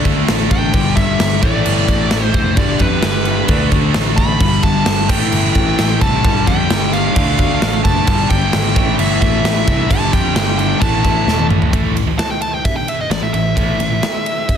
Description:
hard rock; 131 BPM; 4/4; straight; A4 = 440 Hz
crunchy overdriven guitar; riff; 0.0-14.1 s; G2 to D4; -22 LUFS; left 12 dB
crunchy overdriven guitar; riff; 0.0-14.1 s; G2 to D4; -22 LUFS; right 1 dB
heavy high-gain guitar; riff; 0.0-14.0 s; G2 to D4; -24 LUFS; right 13 dB; distortion
picked electric bass; bass; 0.1-14.1 s; E1 to F2; -20 LUFS; equal
big rock drum kit; drums; 0.1-14.6 s; crash cymbal, kick drum, ride cymbal, snare drum, toms; -16 LUFS; equal
nasal lead guitar with a parked wah; melody; 0.5-14.6 s; B4 to B5; -20 LUFS; equal; overdrive, analog delay
small room ambience; dense, heavily limited modern master; -12 LUFS; side -8 dB against mid
0.0-11.7 A section; 11.7-14.6 B section
drum fill 11.3-11.7; lead electric guitar solo 11.7-14.6
0.0 D5; 0.7 G5; 1.4 A5; 2.6 G; 3.5 D5; 4.4 G5; 5.1 Am; 6.2 G5; 7.2 Dm; 8.1 G5; 8.8 Am; 9.9 G5; 10.8 A5
0.28 | 0.74 1.20 1.66 2.11 | 2.57 3.03 3.49 3.95 | 4.41 4.87 5.33 5.79 | 6.24 6.70 7.16 7.62 | 8.07 8.53 8.99 9.44 | 9.90 10.36 10.81 11.27 | 11.73 12.19 12.64 13.10 | 13.56 14.02 14.48

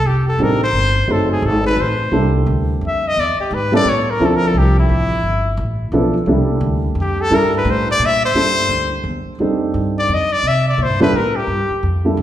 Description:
jazz, small-group swing and bop; 173 BPM; 3/4; swing 63% on 8ths; C mixolydian; A4 = 440 Hz
bright trumpet; melody; 0.0-11.8 s; E4 to E5; -18 LUFS; left 2 dB
upright bass; bass; 0.0-12.2 s; F1 to C3; -19 LUFS; equal
dark baby grand piano; accompaniment; 0.4-12.2 s; F3 to Bb4; -18 LUFS; right 1 dB
wet recital hall reverb, RT60 1.5 s; recorded in a church or concert hall; -14 LUFS; side -12 dB against mid
0.0-8.4 A section; 8.4-12.2 A section
trumpet solo 0.0-12.2
0.0 F13; 1.1 F#dim7; 2.1 C13; 3.2 Em; 3.9 A; 4.2 Dm7; 5.2 G13; 6.3 C13; 9.4 F13; 10.4 C13; 11.5 Gm7
| 0.05 0.39 0.74 | 1.08 1.43 1.78 | 2.12 2.47 2.81 | 3.16 3.51 3.85 | 4.20 4.54 4.89 | 5.24 5.58 5.93 | 6.28 6.62 6.97 | 7.31 7.66 8.01 | 8.35 8.70 9.05 | 9.39 9.74 10.09 | 10.44 10.78 11.13 | 11.48 11.83 12.18

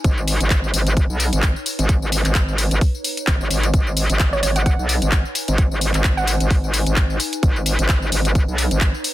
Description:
bass house; 130 BPM; 4/4; swing 56% on 16ths; G# minor; A4 = 440 Hz
metallic wobble bass; bass; 0.0-8.9 s; G#1 to B1; -19 LUFS; equal; chorus, overdrive, sidechain pumping
electronic kick drum; drums; 0.0-8.9 s; -17 LUFS; equal
garage drum kit; drums; 0.0-9.1 s; handclaps, hi-hat, tambourine; -23 LUFS; left 2 dB
warbly tape-like pad; texture; 0.0-9.1 s; D#4 to G#5; -31 LUFS; left 2 dB; chorus, built-in reverb, sidechain pumping
hollow square pluck; melody; 4.3-6.6 s; C#5 to F#5; -27 LUFS; right 4 dB; chorus, cassette tape, digital delay
digital ambience; dense, heavily limited modern master; -16 LUFS; side -15 dB against mid
0.0-9.1 A section
0.0 G#m
| 0.04 0.51 0.97 1.43 | 1.89 2.35 2.81 3.27 | 3.74 4.20 4.66 5.12 | 5.58 6.04 6.51 6.97 | 7.43 7.89 8.35 8.81

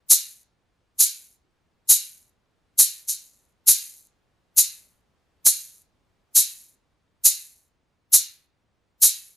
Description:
andean folk; 67 BPM (dotted quarters); 6/8; straight
tube shaker; percussion; 0.1-9.2 s; -11 LUFS; equal
little or no reverb; dry, close 1970s-style studio recording; -15 LUFS; side -15 dB against mid
0.0-3.7 A section; 3.7-9.4 B section
| 0.11 1.00 | 1.90 2.79 | 3.68 4.58 | 5.46 6.36 | 7.25 8.13 | 9.02

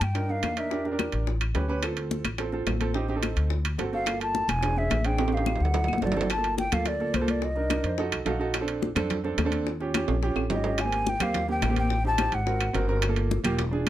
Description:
Afro-Cuban jazz; 214 BPM; 4/4; straight; G minor; A4 = 440 Hz
mellow hollow jazz flute; melody; 0.0-0.9, 3.9-8.0, 10.5-12.8 s; C5 to A5; -29 LUFS; left 1 dB
upright bass; bass; 0.0-13.9 s; E1 to G2; -29 LUFS; equal
bongos; percussion; 0.0-13.9 s; -37 LUFS; left 8 dB
claves; percussion; 0.0-13.9 s; -38 LUFS; left 8 dB
congas; percussion; 0.0-13.9 s; -33 LUFS; left 3 dB
timbales; percussion; 0.0-13.9 s; -32 LUFS; right 6 dB
warm grand piano; accompaniment; 0.1-13.9 s; Bb3 to F5; -30 LUFS; right 4 dB
little or no reverb; close, detailed microphones; -24 LUFS; side -13 dB against mid
0.0-6.3 A section; 6.3-13.9 B section
drum fill 5.2-6.3, 10.1-10.8; grand piano fill 7.7-8.5
0.0 Cm7 (rootless); 0.7 Em7b5; 1.3 A7; 1.8 Dm7; 3.0 Am7b5; 3.5 D7; 4.1 Gm7; 4.6 E7b13; 5.2 Am7b5; 5.7 D7; 6.3 Gm9; 7.4 Cm9; 8.0 F7b9; 8.5 Bbmaj9; 9.7 Eb9; 10.8 Abmaj7; 11.9 Am7b5; 12.5 Ab9; 13.0 Gm9
0.15 0.43 | 0.71 0.99 1.27 1.55 | 1.83 2.11 2.39 2.67 | 2.95 3.23 3.51 3.79 | 4.07 4.35 4.63 4.91 | 5.19 5.47 5.75 6.03 | 6.30 6.58 6.86 7.14 | 7.42 7.70 7.98 8.26 | 8.54 8.82 9.10 9.38 | 9.66 9.94 10.22 10.50 | 10.78 11.06 11.34 11.62 | 11.90 12.18 12.46 12.74 | 13.03 13.31 13.59 13.87

